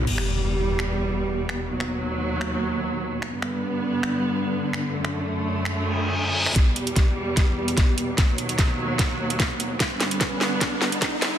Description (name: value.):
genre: heavy wobble dubstep.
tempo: 148 BPM.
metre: 4/4.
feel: swing 54% on 16ths, half-time.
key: E minor.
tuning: A4 = 438 Hz.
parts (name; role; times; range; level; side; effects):
clear studio string section; sustained chords; 0.0-11.4 s; D#2 to B3; -25 LUFS; right 1 dB; sidechain pumping.
dubstep drum kit; drums; 0.1-11.3 s; crash cymbal, finger snaps, hi-hat, snare drum; -27 LUFS; equal; high-pass filter on hats, studio reverb, soft clipping on snare, high-pass filter on snare, high-pass filter on toms, high-pass filter on cymbals.
impact, reverse cymbal and riser; sound effects; 0.1-1.7, 5.9-11.4 s; none; -29 LUFS; equal; none.
electronic kick drum; drums; 6.6-11.1 s; none; -21 LUFS; equal; studio reverb.
room: light reverb, digital ambience.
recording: dense, heavily limited modern master, high-pass filter.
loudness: -21 LUFS.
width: side -10 dB against mid.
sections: 0.1-6.6 A section; 6.6-11.4 B section.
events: impact 0.1-1.7; reverse cymbal 5.9-6.6; build-up 6.6-11.4; drum fill 6.6-11.4; riser 6.6-11.4; filter sweep 6.6-11.4.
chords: 0.1 Em; 1.7 B/D#; 3.3 G; 4.9 D/F#; 6.6 Em; 8.2 B/D#; 9.8 G.